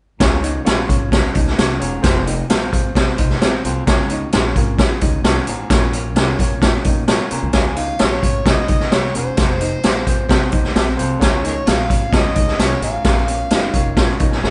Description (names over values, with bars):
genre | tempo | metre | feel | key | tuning
uptempo 1960s-style soul | 131 BPM | 4/4 | straight | Db major | A4 = 439 Hz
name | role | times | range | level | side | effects
warm baby grand piano | accompaniment | 0.2-14.5 s | C4 to Bb5 | -28 LUFS | equal | none
clear baritone saxophone | riff | 0.2-13.2 s | F2 to Bb2 | -32 LUFS | equal | none
vintage hollow-body jazz guitar | riff | 0.2-14.5 s | Bb3 to F4 | -31 LUFS | equal | none
upright bass | bass | 0.2-14.5 s | Fb1 to Bb2 | -26 LUFS | equal | none
raw garage drum kit | drums | 0.2-14.5 s | hi-hat, kick drum, snare drum | -18 LUFS | equal | none
overdriven harmonica | melody | 7.6-14.2 s | Ab4 to Ab5 | -25 LUFS | equal | none
room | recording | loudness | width
little or no reverb | band playing live in one room, nothing above 10.7 kHz, faint mains hum | -17 LUFS | mono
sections
0.2-7.5 A section; 7.5-14.5 B section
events
grand piano fill 14.0-14.5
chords
0.2 Db; 2.0 Fm; 3.9 Db; 5.7 Bbm; 7.5 Db; 9.4 Fm; 11.2 Db; 13.1 Bbm